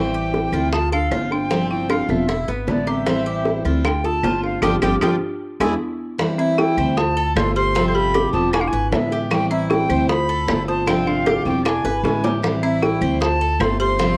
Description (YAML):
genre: latin, Cuban son and guajira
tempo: 154 BPM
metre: 4/4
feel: straight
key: unclear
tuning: A4 = 440 Hz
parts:
  - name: silver concert flute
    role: melody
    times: 0.0-14.2 s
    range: D5 to C6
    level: -26 LUFS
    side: equal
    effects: none
  - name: folk marimba with hard mallets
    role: second line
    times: 0.0-14.2 s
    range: B3 to A4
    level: -27 LUFS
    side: equal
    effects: none
  - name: picked steel-string acoustic guitar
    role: accompaniment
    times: 0.0-14.2 s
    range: C3 to F4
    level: -26 LUFS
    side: equal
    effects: none
  - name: Cuban tres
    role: arpeggios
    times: 0.0-14.2 s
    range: B3 to C5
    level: -30 LUFS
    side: equal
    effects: none
  - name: upright bass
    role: bass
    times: 0.0-14.2 s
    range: E1 to E2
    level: -28 LUFS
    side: equal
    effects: none
  - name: bongos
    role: percussion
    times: 0.3-14.2 s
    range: none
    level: -26 LUFS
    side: equal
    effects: none
  - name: claves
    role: percussion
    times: 0.5-13.8 s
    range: none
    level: -35 LUFS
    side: equal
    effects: none
room: moderate spring reverb, RT60 1.3 s, small room reverb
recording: home recording on cassette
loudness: -20 LUFS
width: mono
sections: 0.0-6.2 A section; 6.2-14.2 B section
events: band accent 4.6-6.2; drum fill 5.0-6.2, 11.8-12.4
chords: 0.0 Am7; 0.7 Dm7; 1.5 G7sus4; 2.3 E7; 3.1 Am7; 3.8 Dm7; 4.6 G7sus4; 5.4 E7; 6.2 D9sus4; 7.0 Dm7; 7.8 G7sus4; 8.5 E7; 9.3 Am7; 10.1 Dm7; 10.9 G7sus4; 11.7 E7; 12.4 Am7; 13.2 Dm7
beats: 0.33 0.72 1.11 | 1.50 1.90 2.29 2.68 | 3.07 3.46 3.85 4.24 | 4.63 5.02 5.41 5.80 | 6.19 6.58 6.97 7.36 | 7.75 8.14 8.54 8.93 | 9.31 9.71 10.10 10.48 | 10.88 11.27 11.65 12.04 | 12.44 12.82 13.21 13.61 | 13.99